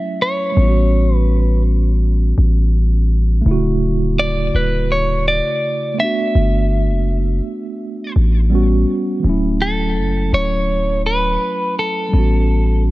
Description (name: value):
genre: contemporary R&B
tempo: 83 BPM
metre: 4/4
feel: straight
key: D major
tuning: A4 = 440 Hz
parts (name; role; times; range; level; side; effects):
- clean electric guitar; melody; 0.0-12.8 s; A4 to E5; -20 LUFS; equal; warbly pitch drift, ping-pong delay
- mellow tine electric piano; accompaniment; 0.0-12.9 s; C#3 to F#4; -21 LUFS; right 2 dB; medium stereo tremolo
- long sustained 808-style bass; bass; 0.6-12.9 s; D1 to A1; -15 LUFS; equal; none
room: digital ambience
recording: dark, warm production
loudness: -14 LUFS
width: side -18 dB against mid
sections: 0.0-9.2 A section; 9.2-12.9 B section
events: none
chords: 0.0 Dmaj9 (rootless); 0.6 A13; 3.5 Dmaj9; 6.0 Gmaj7; 8.5 A13; 9.2 Dmaj9; 12.1 A13